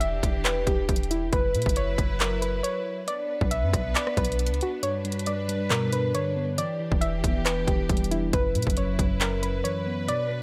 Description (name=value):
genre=hip hop, trap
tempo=137 BPM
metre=4/4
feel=half-time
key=unclear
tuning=A4 = 440 Hz
part: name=soft round pluck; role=melody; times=0.0-10.4 s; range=E4 to E5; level=-31 LUFS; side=equal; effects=chorus
part: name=warm studio string section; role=sustained chords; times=0.0-10.4 s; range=E3 to B4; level=-37 LUFS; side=equal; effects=none
part: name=warm 808-style bass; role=bass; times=0.0-9.6 s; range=E1 to B2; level=-31 LUFS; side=equal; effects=none
part: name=trap drum kit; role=drums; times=0.0-10.2 s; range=handclaps, hi-hat, kick drum, rim click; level=-29 LUFS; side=equal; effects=none
part: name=mellow tine electric piano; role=accompaniment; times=4.8-10.4 s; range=F#2 to D4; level=-32 LUFS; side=equal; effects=none
room=digital ambience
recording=none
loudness=-26 LUFS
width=mono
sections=0.0-10.4 A section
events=kick muted 4.8-5.7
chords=0.0 Em7; 1.3 F#7sus4; 3.1 Bm; 4.8 G; 6.6 Em7; 8.3 F#7sus4